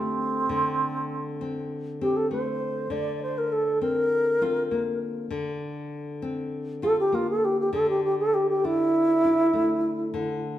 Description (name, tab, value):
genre	acoustic folk duo or small band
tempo	100 BPM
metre	4/4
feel	straight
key	D minor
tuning	A4 = 440 Hz
part	bright reedy wooden-headed alto flute	melody	0.0-10.4 s	C4 to D5	-23 LUFS	right 1 dB	none
part	nylon-string guitar	accompaniment	0.0-10.6 s	D3 to G4	-30 LUFS	left 2 dB	none
room	wet stone room reverb, RT60 1.2 s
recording	band playing live in one room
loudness	-23 LUFS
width	side -12 dB against mid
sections	0.0-10.6 A section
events	alto flute solo 0.0-10.6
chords	0.0 D7(no3); 2.9 Bbsus2/D; 7.7 Asus4/D